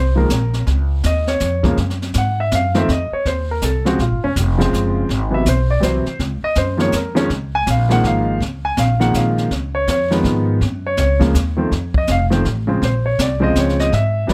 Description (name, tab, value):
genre	jazz piano trio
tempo	163 BPM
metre	3/4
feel	swing 63% on 8ths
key	Db major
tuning	A4 = 440 Hz
part	warm grand piano	melody	0.0-14.3 s	C3 to Ab5	-20 LUFS	equal	none
part	upright bass	bass	0.0-14.3 s	F1 to Ab2	-21 LUFS	equal	none
part	jazz brush drum kit	drums	0.3-14.3 s	brushed snare drum, hi-hat, kick drum, snare drum	-25 LUFS	equal	none
room	little or no reverb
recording	close, detailed microphones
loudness	-18 LUFS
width	mono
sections	0.0-8.4 A section; 8.4-14.3 A section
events	grand piano solo 0.0-14.3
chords	0.0 N.C.; 0.7 Dbadd9; 1.8 Gbsus2; 2.9 F5; 4.0 Bbm9 (rootless); 5.1 Ab7alt; 6.2 Db6; 9.5 Db9; 10.6 Gbmaj7(no3); 11.7 F7; 12.8 Bbm9